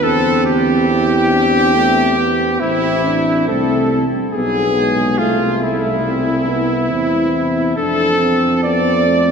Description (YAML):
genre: classical, brass quintet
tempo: 70 BPM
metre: 3/4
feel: straight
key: unclear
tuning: A4 = 438 Hz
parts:
  - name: mellow cornet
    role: melody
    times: 0.0-9.3 s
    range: E4 to D5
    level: -18 LUFS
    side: left 4 dB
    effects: none
  - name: bright trumpet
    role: second line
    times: 0.0-9.3 s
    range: E4 to D5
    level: -21 LUFS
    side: right 7 dB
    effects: none
  - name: mellow French horn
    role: accompaniment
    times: 0.0-9.3 s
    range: Ab3 to E4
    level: -20 LUFS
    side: left 2 dB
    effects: none
  - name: mellow euphonium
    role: accompaniment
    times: 0.0-9.3 s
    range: A3 to C4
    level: -22 LUFS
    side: right 2 dB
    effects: none
  - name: mellow tuba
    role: bass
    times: 0.0-9.3 s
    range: A1 to F2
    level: -20 LUFS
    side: right 2 dB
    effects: none
room: wet cathedral reverb, RT60 5.4 s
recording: none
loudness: -13 LUFS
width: side -6 dB against mid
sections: 0.0-9.3 A section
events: none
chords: 0.0 C/E; 2.6 Am; 4.3 Abm/Cb; 5.2 Am/C; 7.8 Dm7/F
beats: | 0.03 0.89 1.75 | 2.61 3.49 4.34 | 5.19 6.04 6.89 | 7.76 8.62